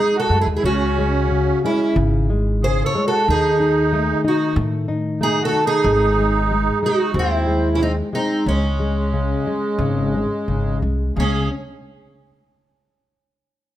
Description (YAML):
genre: fado-style ballad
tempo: 91 BPM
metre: 4/4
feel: rubato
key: C# harmonic minor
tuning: A4 = 440 Hz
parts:
  - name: fingerpicked twelve-string acoustic guitar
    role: melody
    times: 0.0-11.5 s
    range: C#4 to C#5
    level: -21 LUFS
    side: right 1 dB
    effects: none
  - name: musette accordion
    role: second line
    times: 0.0-11.5 s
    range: G#3 to A4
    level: -24 LUFS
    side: right 5 dB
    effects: none
  - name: nylon-string guitar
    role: accompaniment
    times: 0.0-11.5 s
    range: C#3 to D#4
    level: -23 LUFS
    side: left 3 dB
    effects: none
  - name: upright bass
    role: bass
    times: 0.3-11.5 s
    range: G#1 to A2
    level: -21 LUFS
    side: equal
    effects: none
room: light reverb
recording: close, detailed microphones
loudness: -16 LUFS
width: side -13 dB against mid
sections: 0.0-11.2 A section; 11.2-13.8 B section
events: none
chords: 0.0 G#5; 0.6 C#5; 3.3 F#m69/D# (rootless); 5.8 G#5; 8.5 C#5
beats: | 0.64 1.31 1.97 2.62 | 3.27 3.92 4.56 5.20 | 5.84 6.50 7.14 7.79 | 8.46 9.12 9.79 10.48 | 11.16